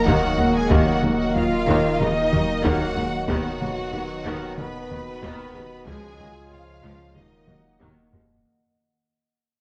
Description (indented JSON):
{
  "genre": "cinematic, hybrid orchestral and electronic film score",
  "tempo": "93 BPM",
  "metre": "4/4",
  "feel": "straight",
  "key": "Eb minor",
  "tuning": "A4 = 440 Hz",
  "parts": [
    { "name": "warm symphonic violin section", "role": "melody", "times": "0.0-7.8 s", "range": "Eb5 to B5", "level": "-32 LUFS", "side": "equal", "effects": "none" },
    { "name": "rich studio violin section", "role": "second line", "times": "0.0-7.8 s", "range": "Eb4 to B4", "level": "-36 LUFS", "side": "equal", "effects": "none" },
    { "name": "dark analog pad", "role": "sustained chords", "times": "0.0-8.4 s", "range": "B2 to Gb5", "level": "-30 LUFS", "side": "equal", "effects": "chorus" },
    { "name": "dark trombone section", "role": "sustained chords", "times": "0.0-8.1 s", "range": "B2 to F4", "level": "-35 LUFS", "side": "equal", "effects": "none" },
    { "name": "mellow French horn section", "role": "sustained chords", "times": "0.0-7.8 s", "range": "Eb3 to F4", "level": "-34 LUFS", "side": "equal", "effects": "none" },
    { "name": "punchy sub bass", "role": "bass", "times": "0.0-8.5 s", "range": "Eb1 to Db2", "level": "-38 LUFS", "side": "equal", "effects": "none" },
    { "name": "warm symphonic viola section", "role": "accompaniment", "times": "0.1-8.2 s", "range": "Db3 to B3", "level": "-32 LUFS", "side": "equal", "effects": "none" },
    { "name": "thumb-piano-like synth pluck", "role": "arpeggios", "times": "0.1-8.3 s", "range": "Db3 to B4", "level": "-35 LUFS", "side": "equal", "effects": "none" },
    { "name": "rich symphonic cello section", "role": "bass", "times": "0.1-8.2 s", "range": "Db2 to Eb2", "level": "-31 LUFS", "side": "equal", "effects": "none" },
    { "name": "warm symphonic double bass section", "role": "bass", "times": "0.1-8.2 s", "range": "Db2 to Eb2", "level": "-31 LUFS", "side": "equal", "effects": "none" },
    { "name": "taiko ensemble", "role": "drums", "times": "0.1-8.4 s", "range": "none", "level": "-28 LUFS", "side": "equal", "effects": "none" }
  ],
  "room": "moderate scoring stage reverb, RT60 1.5 s",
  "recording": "worn, warbling old tape, cassette tape, warbly pitch drift",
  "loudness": "-22 LUFS",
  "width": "mono",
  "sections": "0.0-8.5 A section",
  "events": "fade-out 0.0-8.5; drum fill 7.5-8.5",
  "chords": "0.0 Ebm; 3.3 B/D#; 5.9 Db; 7.2 Ebm"
}